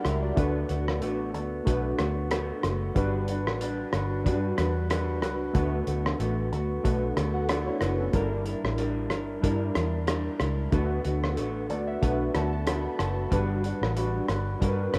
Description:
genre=indie pop, bedroom pop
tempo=93 BPM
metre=4/4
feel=swing 55% on 16ths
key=D major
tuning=A4 = 440 Hz
part: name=electric guitar through a small old amp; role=accompaniment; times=0.0-15.0 s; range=D3 to B4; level=-36 LUFS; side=equal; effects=subtle chorus, warbly pitch drift
part: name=warbly lo-fi synth keys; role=accompaniment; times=0.0-15.0 s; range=G3 to B5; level=-33 LUFS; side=equal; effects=chorus, cassette tape
part: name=cloth-damped thuddy drum kit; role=drums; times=0.0-15.0 s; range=hi-hat, kick drum, rim click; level=-33 LUFS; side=equal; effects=none
part: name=vintage muted fingered electric bass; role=bass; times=0.1-15.0 s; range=F#1 to G2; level=-32 LUFS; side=equal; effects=none
room=light reverb, small room ambience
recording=rough home demo mix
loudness=-28 LUFS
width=mono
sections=0.0-15.0 A section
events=synth keys fill 11.4-13.3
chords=0.4 D6; 3.0 Gmaj7; 5.5 D6; 8.1 Gm6; 10.7 D6; 13.3 Gmaj7

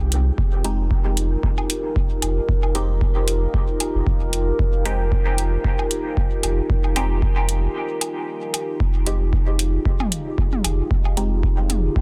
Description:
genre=dub techno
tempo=114 BPM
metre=4/4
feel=swing 56% on 16ths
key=F minor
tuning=A4 = 440 Hz
part: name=dark analog pad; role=sustained chords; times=0.0-12.0 s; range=Eb4 to Bb4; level=-29 LUFS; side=equal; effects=chorus, phaser, sidechain pumping
part: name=warm sub bass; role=bass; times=0.0-11.9 s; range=F1 to C2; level=-24 LUFS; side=equal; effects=sidechain pumping
part: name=electronic hi-hat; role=drums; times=0.1-11.8 s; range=none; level=-26 LUFS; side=equal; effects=none
part: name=electronic kick drum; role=drums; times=0.4-12.0 s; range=none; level=-24 LUFS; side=equal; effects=none
part: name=filtered dub chord stab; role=stabs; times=0.6-11.3 s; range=Ab3 to G4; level=-33 LUFS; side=equal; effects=phaser, sidechain pumping, dub echo
part: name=electronic woodblock and toms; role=percussion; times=1.6-11.8 s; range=none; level=-32 LUFS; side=equal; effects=overdrive, sidechain pumping on perc, sidechain pumping on toms, dub echo
room=little or no reverb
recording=dense, heavily limited modern master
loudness=-21 LUFS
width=mono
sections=0.0-12.0 A section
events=break 7.8-8.8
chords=0.0 Fm9

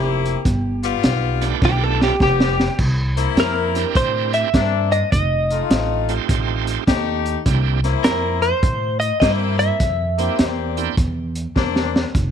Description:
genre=electric blues shuffle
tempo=103 BPM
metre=4/4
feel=swing 65% on 8ths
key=C mixolydian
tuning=A4 = 440 Hz
part: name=direct-recorded clean electric guitar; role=melody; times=0.0-10.9 s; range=G4 to E5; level=-21 LUFS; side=equal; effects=analog chorus
part: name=clear horn section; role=stabs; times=0.0-12.1 s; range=G3 to G4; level=-24 LUFS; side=left 12 dB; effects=none
part: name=upright bass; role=bass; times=0.0-12.3 s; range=F1 to A2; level=-22 LUFS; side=equal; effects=none
part: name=crunchy breakbeat drum kit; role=drums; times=0.3-12.3 s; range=crash cymbal, hi-hat, kick drum, snare drum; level=-20 LUFS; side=right 1 dB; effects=none
part: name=bright tonewheel organ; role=accompaniment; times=1.4-11.0 s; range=A3 to Bb4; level=-25 LUFS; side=right 16 dB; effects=slow rotary speaker, overdrive
room=little or no reverb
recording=1960s-style stereo with parts hard left and right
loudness=-16 LUFS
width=side -8 dB against mid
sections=0.0-2.8 A section; 2.8-12.3 B section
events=clean electric guitar solo 0.0-2.8; drum fill 1.6-2.8, 11.6-12.2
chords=0.5 G7; 2.8 C7; 5.1 F7; 7.5 C7

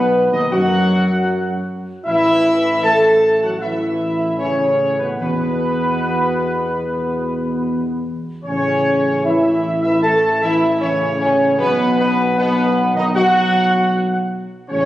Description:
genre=classical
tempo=77 BPM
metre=4/4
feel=straight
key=A lydian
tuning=A4 = 441 Hz
part: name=clear trumpet section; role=melody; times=0.0-14.9 s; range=B4 to A5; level=-21 LUFS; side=equal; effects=none
part: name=clear French horn section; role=sustained chords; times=0.0-14.9 s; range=B3 to A4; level=-18 LUFS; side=left 1 dB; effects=none
part: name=mellow trombone section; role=sustained chords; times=0.0-14.9 s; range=B2 to A3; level=-23 LUFS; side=right 1 dB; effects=none
part: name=mellow tuba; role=bass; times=0.0-14.9 s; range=A1 to F#2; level=-23 LUFS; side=right 1 dB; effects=none
room=wet recital hall reverb, RT60 1.6 s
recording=recorded on a phone in the room, club reverb, compression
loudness=-14 LUFS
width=side -14 dB against mid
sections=0.0-14.9 A section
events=none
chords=0.0 B; 2.1 A5; 5.2 E5; 8.4 A; 11.6 B5

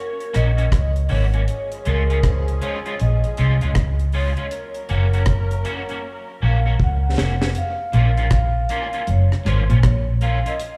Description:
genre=roots reggae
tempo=79 BPM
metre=4/4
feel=swing 63% on 16ths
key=unclear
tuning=A4 = 440 Hz
part: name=vibraphone with medium hard mallets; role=melody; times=0.0-10.8 s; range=Bb4 to Gb5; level=-31 LUFS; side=equal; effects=tape echo
part: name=warm horn section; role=second line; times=0.0-7.1 s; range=F3 to Db5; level=-37 LUFS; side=equal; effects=tape echo, slapback echo
part: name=deep reggae drum kit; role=drums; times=0.2-10.8 s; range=hi-hat, kick drum, rim click, snare drum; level=-24 LUFS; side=equal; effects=none
part: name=electric guitar at the edge of break-up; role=accompaniment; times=0.3-10.5 s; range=Ab3 to Gb4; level=-32 LUFS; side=equal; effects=ensemble chorus, tape echo, slapback echo
part: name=vintage muted fingered electric bass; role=bass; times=0.4-10.4 s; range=F1 to Db2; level=-20 LUFS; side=equal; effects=none
part: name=electric guitar at the edge of break-up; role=riff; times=7.9-10.1 s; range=Gb2 to Bb2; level=-26 LUFS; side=equal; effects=phaser
room=small room ambience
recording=live gig heard through the venue's PA, club reverb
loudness=-20 LUFS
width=mono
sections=0.0-7.6 A section; 7.6-10.8 B section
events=drum fill 6.0-7.6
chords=0.0 Gb; 1.5 Db; 4.5 Gb; 7.6 Bbm

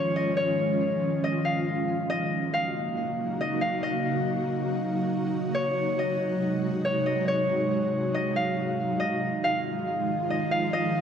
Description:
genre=hip hop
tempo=139 BPM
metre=4/4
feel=half-time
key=unclear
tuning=A4 = 440 Hz
part: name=Celtic harp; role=melody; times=0.0-11.0 s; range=Db5 to F5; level=-28 LUFS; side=left 1 dB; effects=low-pass filter, digital delay
part: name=ethereal airy pad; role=sustained chords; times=0.0-11.0 s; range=C3 to Gb4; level=-27 LUFS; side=right 1 dB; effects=ensemble chorus, built-in reverb, tremolo
room=wet lush hall reverb, RT60 2.9 s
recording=none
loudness=-24 LUFS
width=side -8 dB against mid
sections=0.0-9.0 A section; 9.0-11.0 B section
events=none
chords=0.0 Db; 2.1 Ebm7; 5.6 Ab7; 9.0 Fm7

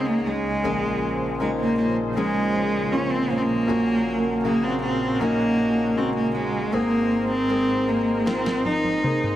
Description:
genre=pop ballad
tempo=79 BPM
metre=4/4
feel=straight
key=unclear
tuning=A4 = 437 Hz
part: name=rich cello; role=melody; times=0.0-9.4 s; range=Ab3 to Eb4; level=-23 LUFS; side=right 1 dB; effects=none
part: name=clear concert grand piano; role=accompaniment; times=0.0-9.4 s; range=Ab1 to C5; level=-26 LUFS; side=left 3 dB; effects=none
part: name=lush unison pad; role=sustained chords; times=0.0-9.4 s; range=Db2 to C5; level=-30 LUFS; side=right 1 dB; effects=chorus, tremolo
part: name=picked steel-string acoustic guitar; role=arpeggios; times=0.0-9.4 s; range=Bb2 to Bb4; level=-33 LUFS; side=right 6 dB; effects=none
part: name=smooth R&B drum kit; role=drums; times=8.3-9.4 s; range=snare drum, toms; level=-27 LUFS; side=equal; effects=none
room=light reverb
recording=none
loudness=-20 LUFS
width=side -12 dB against mid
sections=0.0-9.4 A section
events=drum fill 8.3-9.4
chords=0.0 Dbsus2; 0.6 Bbm7; 3.7 Gb/Bb; 6.7 Abadd9

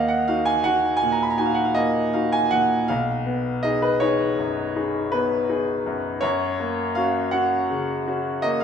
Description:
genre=classical, romantic nocturne for solo piano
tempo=54 BPM (dotted quarters)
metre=9/8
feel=rubato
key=unclear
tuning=A4 = 440 Hz
part: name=clear grand piano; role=solo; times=0.0-8.6 s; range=B1 to B5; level=-20 LUFS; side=equal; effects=none
room=wet recital hall reverb, RT60 1.8 s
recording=minimal, uncompressed stereo recording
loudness=-20 LUFS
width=side -7 dB against mid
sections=0.0-8.6 A section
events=none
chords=0.0 D#m; 2.9 B6; 6.2 F#

